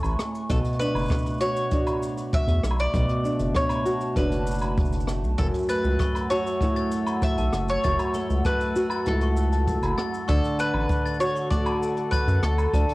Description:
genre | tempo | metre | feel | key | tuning
folktronica | 98 BPM | 4/4 | straight | unclear | A4 = 440 Hz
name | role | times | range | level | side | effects
bowl-back mandolin | melody | 0.0-12.9 s | A4 to E5 | -29 LUFS | equal | vintage 12-bit sampler grit, cassette tape, tape echo
warbly tape-like pad | sustained chords | 0.0-12.9 s | A3 to E6 | -34 LUFS | right 2 dB | chorus, built-in reverb, cassette tape
nylon-string guitar | arpeggios | 0.0-12.9 s | F#2 to F#4 | -28 LUFS | equal | cassette tape
round analog bass | bass | 0.0-12.9 s | F#1 to F#2 | -24 LUFS | equal | tube saturation
jazz brush drum kit | drums | 0.0-12.9 s | hi-hat, rim click, shaker, woodblock | -35 LUFS | equal | cassette tape
kick drum | drums | 0.5-12.9 s | none | -27 LUFS | equal | cassette tape
glockenspiel with hard plastic mallets | second line | 5.7-12.8 s | A5 to A6 | -35 LUFS | left 5 dB | cassette tape, tape echo
room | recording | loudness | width
light reverb, studio reverb | home recording on cassette | -22 LUFS | side -20 dB against mid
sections
0.0-12.9 A section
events
none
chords
0.5 Bm9; 5.4 F#m7; 10.3 Dmaj7

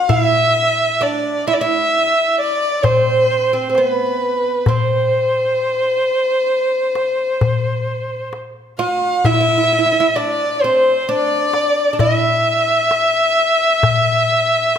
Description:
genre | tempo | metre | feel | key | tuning
Arabic maqam ensemble | 131 BPM (eighths) | 10/8 | straight | E maqam saba | A4 = 440 Hz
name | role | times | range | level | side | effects
dark violin | melody | 0.0-14.8 s | B4 to F#5-50c | -15 LUFS | equal | slapback echo
oud | second line | 0.0-14.8 s | B3 to F#4-50c | -20 LUFS | right 3 dB | none
darbuka | percussion | 0.1-14.8 s | none | -20 LUFS | left 4 dB | none
room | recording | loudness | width
moderate recital hall reverb, RT60 1.7 s | none | -14 LUFS | side -8 dB against mid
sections
0.1-14.8 A section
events
none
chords
none

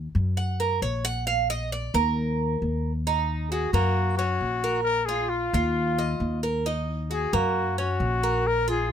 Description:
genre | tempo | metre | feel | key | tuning
latin, Cuban son and guajira | 134 BPM | 4/4 | straight | Eb minor | A4 = 440 Hz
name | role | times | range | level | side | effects
upright bass | bass | 0.0-8.9 s | Bb1 to Gb2 | -27 LUFS | equal | none
Cuban tres | arpeggios | 0.4-8.9 s | Bb3 to Gb5 | -27 LUFS | right 4 dB | none
breathy trumpet | melody | 3.5-8.9 s | F4 to Bb4 | -27 LUFS | left 5 dB | none
room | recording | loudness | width
little or no reverb | close, detailed microphones | -23 LUFS | side -8 dB against mid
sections
0.0-3.1 A section; 3.1-8.9 B section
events
Cuban tres solo 0.0-3.1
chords
0.4 Gb; 1.3 Bbadd11; 2.2 Eb5; 3.1 Ebm; 4.0 Gb; 4.9 Bb5; 5.8 Ebm; 7.6 Gb

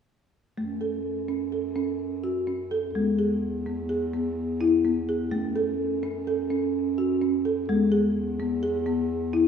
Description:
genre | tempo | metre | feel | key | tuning
contemporary instrumental, contemporary | 127 BPM | 5/4 | straight | F# minor | A4 = 439 Hz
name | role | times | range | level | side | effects
folk marimba with soft mallets | arpeggios | 0.6-9.5 s | G#3 to A4 | -25 LUFS | left 1 dB | none
mellow bass clarinet | bass | 0.6-9.5 s | E2 to F#2 | -30 LUFS | right 3 dB | none
room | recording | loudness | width
wet recital hall reverb, RT60 1.7 s | studio ambience | -24 LUFS | side -7 dB against mid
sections
0.6-9.5 A section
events
none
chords
0.6 F#m; 2.9 E; 5.3 F#m; 7.7 E

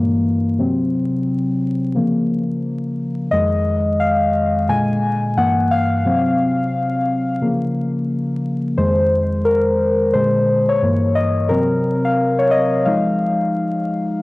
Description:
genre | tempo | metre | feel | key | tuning
hip hop | 88 BPM | 4/4 | swing 63% on 16ths | F minor | A4 = 439 Hz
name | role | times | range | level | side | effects
muted felt-like synth keys | solo | 0.0-14.2 s | F2 to Ab5 | -16 LUFS | left 1 dB | chorus, cassette tape, analog delay
room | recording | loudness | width
light reverb | home recording on cassette, vinyl crackle | -16 LUFS | side -20 dB against mid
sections
0.0-14.2 A section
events
synth keys solo 0.0-14.2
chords
0.0 Gm6; 0.6 N.C.; 1.9 Db6; 3.3 Fm7; 4.7 Bb7; 5.4 Gm6; 6.0 Csus4; 7.4 Db6; 8.8 Fm7; 10.1 Bb9; 10.8 Gdim7; 11.5 Cm7b5; 12.9 Fm7

